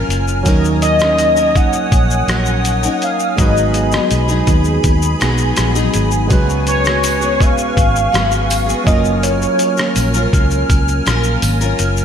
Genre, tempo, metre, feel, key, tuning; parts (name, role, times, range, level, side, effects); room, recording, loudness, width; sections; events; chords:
indie pop, bedroom pop; 82 BPM; 4/4; straight; G# dorian; A4 = 440 Hz
overdriven tine electric piano; accompaniment; 0.0-12.0 s; F#3 to B4; -22 LUFS; right 5 dB; cassette tape
picked steel-string acoustic guitar; accompaniment; 0.0-12.0 s; F#3 to A#4; -22 LUFS; left 5 dB; wide subtle chorus, warbly pitch drift, slapback echo
hollow soft pad; sustained chords; 0.0-12.0 s; G#4 to E#6; -22 LUFS; right 2 dB; ensemble chorus
vintage muted fingered electric bass; bass; 0.1-12.0 s; F#1 to D#2; -18 LUFS; equal
trip hop sampler-style drum kit; drums; 0.1-12.0 s; hi-hat, kick drum, rim click, shaker; -18 LUFS; equal
warm velvety synth lead; melody; 0.8-10.3 s; C#5 to F#5; -17 LUFS; left 1 dB; lush chorus, slapback echo, digital delay
tambourine; percussion; 7.0-11.6 s; -30 LUFS; right 7 dB
moderate lush hall reverb, RT60 2.7 s; big arena sound; -12 LUFS; side -8 dB against mid
0.0-12.0 A section
0.5 D#m7; 3.4 G#m7; 6.3 C#7sus4; 8.9 F#maj7